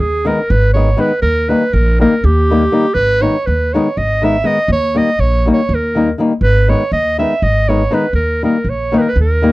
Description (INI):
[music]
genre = balkan folk, Balkan wedding band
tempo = 242 BPM (eighths)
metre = 7/8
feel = straight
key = G# harmonic minor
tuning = A4 = 440 Hz
[part]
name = clear clarinet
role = melody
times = 0.0-9.5 s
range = G4 to E5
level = -16 LUFS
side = right 2 dB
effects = none
[part]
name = upright bass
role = bass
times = 0.0-9.5 s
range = G#1 to D#2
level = -15 LUFS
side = equal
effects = none
[part]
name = flamenco guitar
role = accompaniment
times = 0.2-9.5 s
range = D#3 to D#4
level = -14 LUFS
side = left 2 dB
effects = none
[sound]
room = light reverb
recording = dry, close 1970s-style studio recording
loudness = -11 LUFS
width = side -19 dB against mid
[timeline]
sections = 0.0-9.5 A section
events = none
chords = 0.0 G#m; 1.2 D#; 2.9 G#m; 4.7 D#; 6.4 G#m; 8.1 D#